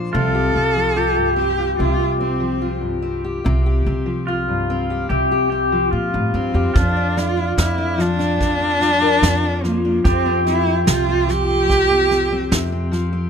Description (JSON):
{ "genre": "acoustic folk duo or small band", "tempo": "73 BPM", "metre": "4/4", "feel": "straight", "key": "unclear", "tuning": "A4 = 440 Hz", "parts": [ { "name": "fingerpicked steel-string acoustic guitar", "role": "accompaniment", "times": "0.0-13.3 s", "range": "F2 to C5", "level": "-22 LUFS", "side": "left 3 dB", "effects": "none" }, { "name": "upright bass", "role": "bass", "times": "0.0-13.3 s", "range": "C2 to Bb2", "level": "-22 LUFS", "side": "right 1 dB", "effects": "none" }, { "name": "warm cello", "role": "melody", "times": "0.1-12.9 s", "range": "Bb3 to A4", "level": "-20 LUFS", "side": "right 1 dB", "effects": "none" }, { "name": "pedal steel guitar", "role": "second line", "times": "0.1-13.3 s", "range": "F4 to G4", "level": "-23 LUFS", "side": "equal", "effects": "none" }, { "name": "soft brush drum kit", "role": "drums", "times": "6.8-13.0 s", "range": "kick drum, snare drum", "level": "-21 LUFS", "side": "right 1 dB", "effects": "none" } ], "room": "light reverb", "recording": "close, detailed microphones", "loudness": "-16 LUFS", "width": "side -7 dB against mid", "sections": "0.0-6.8 A section; 6.8-13.3 B section", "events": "none", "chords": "0.1 Csus4; 6.8 Bb/F; 10.0 Fsus2", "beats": "| 0.14 0.97 1.79 2.62 | 3.45 4.27 5.10 5.92 | 6.75 7.57 8.40 9.22 | 10.04 10.86 11.69 12.51" }